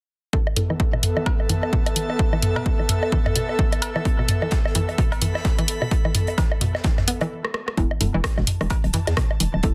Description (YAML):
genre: minimal techno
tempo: 129 BPM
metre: 4/4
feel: swing 59% on 16ths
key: unclear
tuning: A4 = 440 Hz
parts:
  - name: hollow square pluck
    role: riff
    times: 0.3-9.5 s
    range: B2 to B3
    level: -32 LUFS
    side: equal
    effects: chorus, sidechain pumping, delay
  - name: filtered dub chord stab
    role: stabs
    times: 0.3-9.7 s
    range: B3 to A4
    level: -35 LUFS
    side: equal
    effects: phaser, lush chorus, tape echo
  - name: electronic kick drum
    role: drums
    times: 0.3-9.7 s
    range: none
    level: -24 LUFS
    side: equal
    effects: none
  - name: airy breathy pad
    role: texture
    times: 0.3-9.7 s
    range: B3 to B5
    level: -32 LUFS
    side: equal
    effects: chorus, sidechain pumping
  - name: pulsing gated texture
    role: texture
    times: 1.0-7.3 s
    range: A4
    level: -38 LUFS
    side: equal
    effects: chorus, built-in reverb, sidechain pumping
  - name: electronic woodblock, toms and cowbell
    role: percussion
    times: 0.5-9.6 s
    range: none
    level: -27 LUFS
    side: equal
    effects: overdrive
  - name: house drum kit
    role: drums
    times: 0.6-9.5 s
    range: hi-hat, rim click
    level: -27 LUFS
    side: equal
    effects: soft clipping on snare
  - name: open jazz drum kit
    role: drums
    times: 4.1-9.7 s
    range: hi-hat, snare drum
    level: -41 LUFS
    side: equal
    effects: sidechain pumping on hats, high-pass filter on hats, high-pass filter on snare, high-pass filter on room
  - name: hollow knocking FM bass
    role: bass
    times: 7.8-9.7 s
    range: D1 to E2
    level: -26 LUFS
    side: equal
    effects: sidechain pumping
room: light reverb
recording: dense, heavily limited modern master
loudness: -22 LUFS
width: mono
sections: 0.3-7.8 A section; 7.8-9.7 B section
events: filter sweep on synth arpeggio sound 0.3-7.8; stop 7.3-7.8; drum fill 7.4-7.8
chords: 0.3 Esus4